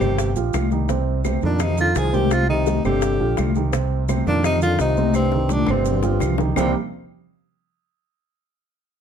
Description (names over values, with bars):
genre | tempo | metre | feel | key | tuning
Afro-Cuban jazz | 169 BPM | 4/4 | straight | C minor | A4 = 440 Hz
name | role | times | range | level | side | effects
clear tenor saxophone | melody | 0.0-6.7 s | C4 to Ab4 | -23 LUFS | equal | none
breathy trombone | second line | 0.0-6.7 s | G2 to G3 | -27 LUFS | left 7 dB | none
dark baby grand piano | accompaniment | 0.0-6.7 s | C3 to C5 | -25 LUFS | right 8 dB | none
modern bright fingered electric bass | bass | 0.0-6.7 s | G1 to F2 | -22 LUFS | equal | none
bongos | percussion | 0.0-6.7 s | none | -29 LUFS | left 9 dB | none
claves | percussion | 0.0-6.7 s | none | -36 LUFS | left 2 dB | none
congas | percussion | 0.0-6.7 s | none | -27 LUFS | left 4 dB | none
maracas | percussion | 0.0-6.7 s | none | -39 LUFS | right 7 dB | none
room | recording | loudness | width
moderate studio reverb, RT60 0.8 s | none | -18 LUFS | side -8 dB against mid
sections
0.0-6.6 A section; 6.6-8.0 B section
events
drum fill 5.2-6.6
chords
0.2 G7sus4; 0.9 F5; 2.3 Cm; 3.0 G7sus4; 3.7 F5; 5.2 Cm; 5.9 G7sus4; 6.6 Cm7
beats
0.19 0.54 | 0.90 1.25 1.61 1.96 | 2.32 2.67 3.03 3.38 | 3.73 4.09 4.45 4.80 | 5.15 5.51 5.86 6.22 | 6.57